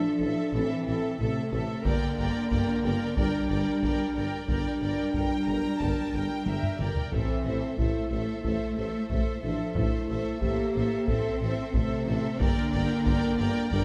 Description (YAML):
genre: cinematic, epic orchestral film score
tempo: 91 BPM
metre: 4/4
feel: straight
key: A phrygian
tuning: A4 = 442 Hz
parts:
  - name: warm symphonic violin section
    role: melody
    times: 0.0-13.8 s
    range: E5 to G5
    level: -42 LUFS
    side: equal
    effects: none
  - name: clear symphonic violin section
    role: second line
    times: 0.0-13.8 s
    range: A4 to Bb5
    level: -42 LUFS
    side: equal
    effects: none
  - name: clear symphonic viola section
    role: accompaniment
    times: 0.0-13.8 s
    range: A4 to Bb4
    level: -40 LUFS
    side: equal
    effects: none
  - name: dark French horn section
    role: sustained chords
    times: 0.0-13.8 s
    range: A3 to A4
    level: -32 LUFS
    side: equal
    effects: none
  - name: warm symphonic cello section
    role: bass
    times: 0.0-13.8 s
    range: C3 to C4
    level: -36 LUFS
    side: equal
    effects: none
  - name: rich symphonic double bass section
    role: bass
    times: 0.2-13.8 s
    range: G1 to A1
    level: -36 LUFS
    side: equal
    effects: none
  - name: warm tuba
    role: bass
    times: 0.2-13.8 s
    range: G1 to A1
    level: -39 LUFS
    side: equal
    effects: none
  - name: taiko ensemble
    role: drums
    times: 1.9-13.8 s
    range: none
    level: -34 LUFS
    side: equal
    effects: none
room: moderate scoring stage reverb, RT60 1.6 s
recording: none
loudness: -28 LUFS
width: mono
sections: 0.0-13.8 A section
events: drum fill 6.5-7.1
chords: 0.0 Am; 1.9 Gm; 7.1 Am; 12.4 Gm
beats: 0.53 1.19 | 1.85 2.51 3.17 3.83 | 4.49 5.15 5.81 6.47 | 7.13 7.79 8.45 9.10 | 9.76 10.42 11.08 11.74 | 12.40 13.06 13.72